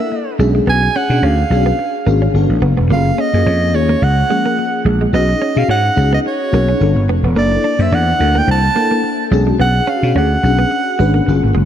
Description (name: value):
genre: pop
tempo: 108 BPM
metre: 4/4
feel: swing 54% on 16ths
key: unclear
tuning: A4 = 440 Hz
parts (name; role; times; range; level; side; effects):
- breathy soprano saxophone; melody; 0.0-11.5 s; C#5 to A5; -18 LUFS; right 3 dB; none
- FM electric piano with soft pad layer; accompaniment; 0.0-11.7 s; E#3 to B#4; -18 LUFS; left 4 dB; ensemble chorus
- direct-recorded clean electric guitar; riff; 0.0-11.7 s; G#3 to D4; -22 LUFS; right 4 dB; wide subtle chorus
- vintage slap bass; bass; 0.4-11.7 s; E1 to B2; -14 LUFS; equal; none
room: light reverb, digital ambience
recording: dark, warm production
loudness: -12 LUFS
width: side -10 dB against mid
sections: 0.0-11.7 A section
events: none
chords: 0.4 Bm6; 2.3 Gmaj9; 2.9 F#maj9; 5.1 B69; 6.8 G9; 7.4 F#7alt; 9.3 Bm6